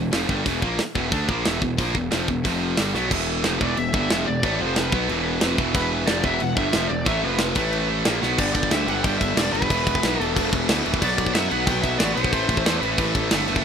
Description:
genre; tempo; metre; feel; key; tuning
heavy metal; 182 BPM; 4/4; straight; E minor; A4 = 440 Hz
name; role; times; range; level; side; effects
high-gain distorted guitar; riff; 0.0-13.6 s; E2 to D4; -27 LUFS; left 13 dB; distortion
high-gain distorted guitar; riff; 0.0-13.6 s; E2 to D4; -25 LUFS; right 13 dB; distortion
fuzz picked electric bass; bass; 0.0-13.6 s; E1 to F#2; -27 LUFS; left 1 dB; overdrive
tight metal drum kit; drums; 0.1-13.6 s; china cymbal, crash cymbal, hi-hat, kick drum, snare drum; -25 LUFS; equal; none
high-gain lead guitar; melody; 3.6-13.1 s; B4 to G5; -27 LUFS; equal; distortion
room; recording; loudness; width
little or no reverb; rough home demo mix; -19 LUFS; side -7 dB against mid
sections
0.0-3.1 A section; 3.1-8.4 B section; 8.4-13.6 C section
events
drum fill 2.9, 8.2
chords
0.0 Em; 2.4 F5; 2.8 Gmaj7; 3.1 Em; 4.6 F5; 4.9 Em; 7.2 F5; 7.6 A5; 8.1 F#add11/A#; 8.4 G5; 9.7 E5; 11.0 B5; 12.3 Am

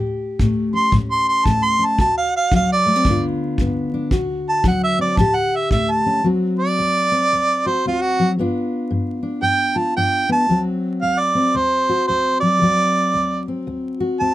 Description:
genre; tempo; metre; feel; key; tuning
acoustic country blues, solo or duo; 113 BPM; 4/4; swing 62% on 8ths; D mixolydian; A4 = 440 Hz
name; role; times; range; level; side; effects
fingerpicked steel-string acoustic guitar; accompaniment; 0.0-14.3 s; D2 to G4; -20 LUFS; left 2 dB; none
kick drum; drums; 0.4-5.9 s; none; -22 LUFS; equal; none
mellow harmonica; melody; 0.8-14.3 s; F4 to C6; -17 LUFS; right 2 dB; none
room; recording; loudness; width
light reverb; close, detailed microphones, vinyl crackle; -16 LUFS; side -14 dB against mid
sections
0.0-6.2 A section; 6.2-14.3 A section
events
harmonica solo 0.0-6.2, 6.2-14.3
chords
0.0 A7; 2.0 D; 3.1 G7; 4.1 D7; 5.2 A7; 6.2 D7; 8.4 G7; 10.5 D7

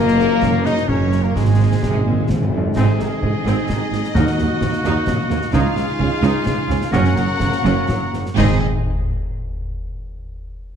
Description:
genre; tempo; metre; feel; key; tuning
cinematic, heroic adventure film score; 128 BPM; 3/4; straight; Ab mixolydian; A4 = 438 Hz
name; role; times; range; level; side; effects
clear symphonic violin section; melody; 0.0-8.7 s; Ab4 to Gb5; -29 LUFS; left 6 dB; none
rich symphonic violin section; second line; 0.0-8.6 s; Gb4 to Eb5; -32 LUFS; left 2 dB; none
silver concert flute; second line; 0.0-8.7 s; Ab4 to Ab5; -32 LUFS; left 2 dB; none
warm clarinet; second line; 0.0-8.6 s; Ab3 to Eb4; -27 LUFS; left 4 dB; none
dark symphonic viola section; accompaniment; 0.0-8.7 s; Eb3 to Eb4; -28 LUFS; equal; none
warm French horn section; sustained chords; 0.0-8.6 s; Ab3 to Eb4; -26 LUFS; left 2 dB; none
clear trumpet; stabs; 0.0-8.6 s; Ab3 to Ab4; -26 LUFS; equal; none
mellow tuba; bass; 0.0-8.6 s; Gb1 to Eb2; -26 LUFS; right 4 dB; none
rich symphonic cello section; bass; 0.0-8.7 s; Db2 to C3; -22 LUFS; right 3 dB; none
rich symphonic double bass section; bass; 0.0-8.6 s; Gb1 to Eb2; -23 LUFS; right 4 dB; none
concert snare drum, concert bass drum and clash cymbals; drums; 0.1-8.7 s; none; -24 LUFS; left 1 dB; none
timpani; percussion; 1.4-4.8, 8.4-8.6 s; Ab2 to Eb3; -25 LUFS; left 2 dB; none
warm oboe; second line; 2.8-8.6 s; Ab4 to C5; -34 LUFS; equal; none
room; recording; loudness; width
moderate scoring stage reverb, RT60 1.8 s; dark, warm production; -16 LUFS; side -8 dB against mid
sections
0.0-2.8 A section; 2.8-8.4 B section; 8.4-9.8 C section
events
timpani fill 1.4-2.8; slowing down 4.8-8.4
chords
0.0 Gbadd9; 1.4 Ab; 4.2 Ebm; 5.5 Dbadd9; 6.9 Gb; 8.4 Ab

